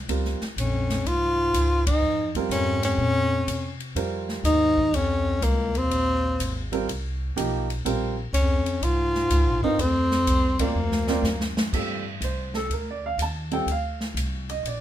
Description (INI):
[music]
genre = modal jazz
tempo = 124 BPM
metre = 4/4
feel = swing 67% on 8ths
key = Bb dorian, G minor from 11.7 s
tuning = A4 = 437 Hz
[part]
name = upright bass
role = bass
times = 0.0-14.8 s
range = Ab1 to C3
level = -28 LUFS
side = equal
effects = none
[part]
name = warm upright piano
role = accompaniment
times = 0.1-14.8 s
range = F3 to A5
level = -28 LUFS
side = right 5 dB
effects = none
[part]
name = swinging big-band drum kit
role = drums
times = 0.1-14.8 s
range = crash cymbal, hi-hat, kick drum, ride cymbal, snare drum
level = -32 LUFS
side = left 1 dB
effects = none
[part]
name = warm tenor saxophone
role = melody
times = 0.6-11.5 s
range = Bb3 to F4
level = -24 LUFS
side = left 1 dB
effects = none
[part]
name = mellow bass clarinet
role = second line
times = 0.6-11.5 s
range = Db2 to Ab2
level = -28 LUFS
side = left 1 dB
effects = none
[sound]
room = moderate studio reverb, RT60 0.6 s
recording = minimal, uncompressed stereo recording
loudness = -22 LUFS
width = side -11 dB against mid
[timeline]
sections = 0.0-11.7 A section; 11.7-14.8 B section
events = band accent 1.8, 10.5; drum fill 10.8-11.7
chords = 0.0 Bbm11; 9.8 D7alt; 11.7 G7sus2